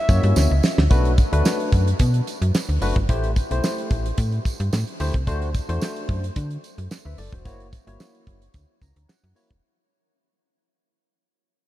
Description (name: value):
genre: early-eighties boogie funk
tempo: 110 BPM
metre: 4/4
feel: straight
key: unclear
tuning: A4 = 440 Hz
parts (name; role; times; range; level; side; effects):
- fat analog lead; melody; 0.0-0.6 s; E5; -31 LUFS; left 1 dB; ping-pong delay
- barky tine electric piano; accompaniment; 0.1-9.6 s; A3 to A#5; -28 LUFS; left 2 dB; analog chorus
- slap-like FM bass; bass; 0.1-9.6 s; E1 to D3; -21 LUFS; equal; none
- damped 70s drum kit; drums; 0.1-9.6 s; handclaps, hi-hat, kick drum, snare drum; -22 LUFS; equal; none
- tambourine; percussion; 0.1-9.5 s; none; -38 LUFS; right 6 dB; none
room: light reverb, studio ambience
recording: none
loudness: -19 LUFS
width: side -14 dB against mid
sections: 0.9-9.6 A section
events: drum fill 0.4-0.9; fade-out 0.9-9.6; tine electric piano fill 8.5-9.6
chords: 0.0 F#7; 0.9 Bm7; 3.1 Am7; 5.3 D7; 7.5 F#7